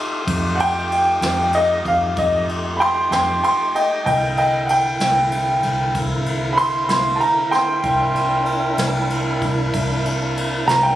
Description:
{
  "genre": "slow blues",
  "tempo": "63 BPM (dotted quarters)",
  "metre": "12/8",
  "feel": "straight",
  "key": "C mixolydian",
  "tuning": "A4 = 440 Hz",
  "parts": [
    { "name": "clear saxophone section", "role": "sustained chords", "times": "0.0-11.0 s", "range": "A3 to F4", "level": "-28 LUFS", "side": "left 1 dB", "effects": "none" },
    { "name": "tonewheel organ", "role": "sustained chords", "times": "0.0-11.0 s", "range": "D3 to Bb4", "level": "-26 LUFS", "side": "equal", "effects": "slow rotary speaker" },
    { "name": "vintage muted fingered electric bass", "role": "bass", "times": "0.3-11.0 s", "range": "C2 to F2", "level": "-25 LUFS", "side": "equal", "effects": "none" },
    { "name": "jazz brush drum kit", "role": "drums", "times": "0.3-10.8 s", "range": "kick drum, ride cymbal, snare drum", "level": "-27 LUFS", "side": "left 1 dB", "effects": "none" },
    { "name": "warm upright piano", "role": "second line", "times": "0.6-11.0 s", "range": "Eb5 to C6", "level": "-17 LUFS", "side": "right 1 dB", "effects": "none" }
  ],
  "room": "light reverb, studio reverb",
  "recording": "recorded on a phone in the room, club reverb",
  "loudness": "-16 LUFS",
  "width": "side -13 dB against mid",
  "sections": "0.0-11.0 A section",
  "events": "upright piano solo 0.0-11.0",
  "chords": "0.0 F7; 4.1 C7",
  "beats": "| 0.27 1.22 2.17 3.11 | 4.06 5.00 5.95 6.89 | 7.84 8.79 9.73 10.68"
}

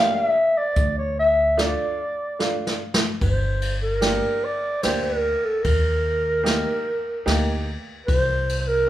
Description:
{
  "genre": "klezmer",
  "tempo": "74 BPM",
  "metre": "3/4",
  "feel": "straight",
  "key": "D harmonic minor, G minor from 3.2 s",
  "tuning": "A4 = 440 Hz",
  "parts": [
    { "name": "growling clarinet", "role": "melody", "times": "0.0-8.9 s", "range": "A4 to F5", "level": "-22 LUFS", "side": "equal", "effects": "none" },
    { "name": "clear upright piano", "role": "accompaniment", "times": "0.0-8.9 s", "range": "A3 to G4", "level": "-27 LUFS", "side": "right 3 dB", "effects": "none" },
    { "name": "upright bass", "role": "bass", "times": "0.8-8.9 s", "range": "G1 to Eb2", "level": "-25 LUFS", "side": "equal", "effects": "none" },
    { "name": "jazz brush drum kit", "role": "drums", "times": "0.8-8.7 s", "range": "hi-hat, kick drum, ride cymbal, snare drum", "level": "-26 LUFS", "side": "equal", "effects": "none" }
  ],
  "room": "moderate large studio reverb, RT60 1.3 s",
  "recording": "band playing live in one room",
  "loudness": "-20 LUFS",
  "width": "side -13 dB against mid",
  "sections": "0.0-3.2 A section; 3.2-8.9 B section",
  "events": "drum fill 2.4-3.2",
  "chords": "0.0 Gm; 0.8 Dm; 3.2 Gm; 5.6 Eb; 8.1 N.C.",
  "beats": "| 0.76 1.57 2.39 | 3.20 4.02 4.83 | 5.64 6.46 7.27 | 8.08 8.88"
}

